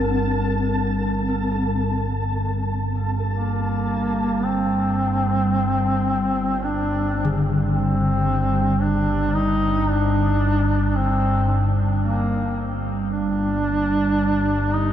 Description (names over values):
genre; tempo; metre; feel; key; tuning
dark ambient drone; 56 BPM; 4/4; straight; G minor; A4 = 442 Hz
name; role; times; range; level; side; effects
gamelan-type bronze metallophone; arpeggios; 0.0-13.7 s; D3 to Bb4; -28 LUFS; left 1 dB; tape echo
analog drone; drone; 0.0-14.9 s; G1 to G2; -22 LUFS; equal; chorus
flickering grainy texture; texture; 0.0-4.5 s; A5; -31 LUFS; right 1 dB; built-in reverb
warm duduk; melody; 3.3-14.9 s; Bb3 to Eb4; -23 LUFS; equal; tape echo
room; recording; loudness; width
wet huge ambient reverb, RT60 8.1 s; none; -19 LUFS; side -10 dB against mid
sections
0.0-4.5 A section; 4.5-14.9 B section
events
filter sweep on synth drone 0.0-4.5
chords
0.0 Gmadd9; 4.5 Gm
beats
| 0.07 1.15 2.24 3.35 | 4.46 5.55 6.63 7.72 | 8.80 9.88 10.95 12.02 | 13.10 14.18